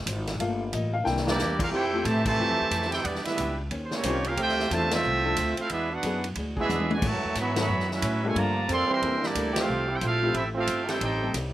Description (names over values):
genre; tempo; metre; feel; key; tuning
jazz, big band swing; 181 BPM; 4/4; swing 63% on 8ths; F major; A4 = 440 Hz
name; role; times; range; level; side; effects
upright bass; bass; 0.0-11.5 s; G1 to A2; -31 LUFS; equal; none
picked old ladder-braced acoustic guitar; accompaniment; 0.1-11.5 s; Ab2 to C5; -40 LUFS; left 3 dB; none
swinging big-band drum kit; drums; 0.1-11.4 s; crash cymbal, hi-hat, kick drum, ride cymbal, snare drum, toms; -32 LUFS; equal; none
dark baby grand piano; accompaniment; 0.4-11.3 s; E3 to G5; -31 LUFS; left 4 dB; slapback echo
brilliant trumpet section; melody; 1.3-11.3 s; Bb3 to C6; -28 LUFS; right 2 dB; slapback echo
bright trombone section; second line; 1.3-11.3 s; B2 to G4; -30 LUFS; right 3 dB; slapback echo
clear trombone section; sustained chords; 1.7-1.9, 4.0-4.2, 6.6-7.0, 9.5-11.3 s; F3 to C5; -34 LUFS; right 1 dB; none
room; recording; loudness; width
little or no reverb; none; -24 LUFS; side -14 dB against mid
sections
0.0-1.7 A section; 1.7-11.5 B section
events
grand piano solo 0.0-1.7; drum fill 1.1-1.4, 6.7-7.0; band accent 2.2, 4.9, 7.5, 9.5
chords
0.4 Gm9; 1.1 C9; 1.7 Fmaj9; 3.0 Em7; 3.7 Eb13; 4.4 Dm9; 5.7 E9; 7.0 A69; 8.4 Gm9; 9.0 C13; 9.7 Fmaj9; 11.0 Am7b5